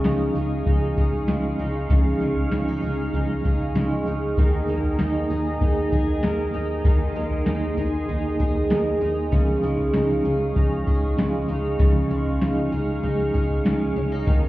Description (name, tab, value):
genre	dream pop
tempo	97 BPM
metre	4/4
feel	straight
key	unclear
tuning	A4 = 436 Hz
part	clean electric guitar	accompaniment	0.0-14.5 s	Db3 to Ab4	-27 LUFS	right 2 dB	tremolo, analog chorus
part	phased analog pad	sustained chords	0.0-14.5 s	Ab4 to F6	-30 LUFS	right 2 dB	phaser, chorus
part	picked twelve-string acoustic guitar	arpeggios	0.0-14.5 s	Db3 to Ab4	-27 LUFS	left 1 dB	analog chorus, digital delay
part	woody fretless electric bass	bass	0.0-14.5 s	Db2 to Eb2	-27 LUFS	equal	lush chorus
part	soft vintage rhythm box	drums	0.0-14.4 s	kick drum, snare drum, tambourine, toms	-22 LUFS	equal	none
room	light reverb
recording	heard muffled through a wall, stone room reverb, EQ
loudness	-20 LUFS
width	side -17 dB against mid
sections	0.0-14.5 A section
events	none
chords	0.0 Dbadd9; 4.4 Ebsus4; 9.3 Dbadd9